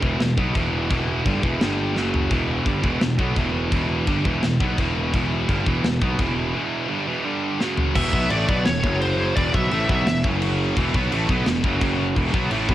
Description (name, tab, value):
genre	heavy metal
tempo	170 BPM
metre	4/4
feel	straight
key	E minor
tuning	A4 = 440 Hz
part	heavy high-gain guitar	riff	0.0-12.7 s	E2 to B3	-28 LUFS	left 8 dB	distortion, cassette tape
part	heavy high-gain guitar	riff	0.0-12.7 s	E2 to B3	-26 LUFS	right 6 dB	distortion, cassette tape
part	fuzz picked electric bass	bass	0.0-12.7 s	E1 to B1	-25 LUFS	equal	overdrive
part	tight metal drum kit	drums	0.0-12.7 s	china cymbal, crash cymbal, kick drum, snare drum, toms	-24 LUFS	equal	cassette tape
part	high-gain lead guitar	melody	8.0-10.2 s	C5 to E5	-26 LUFS	left 1 dB	distortion, cassette tape
part	high-gain distorted guitar	riff	8.0-12.7 s	E2 to B3	-28 LUFS	equal	distortion, cassette tape
room	light reverb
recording	home recording on cassette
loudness	-19 LUFS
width	side -13 dB against mid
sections	0.0-8.0 A section; 8.0-12.7 B section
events	drum fill 2.0-2.3, 7.6-8.0; break 6.5-8.0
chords	0.0 Em; 1.6 G5; 2.0 F#5; 2.3 Em; 7.2 G5; 7.6 F#5; 8.0 E5; 8.8 F#5; 9.4 E5; 10.2 F#5; 10.8 E5; 11.8 F#5; 12.2 E5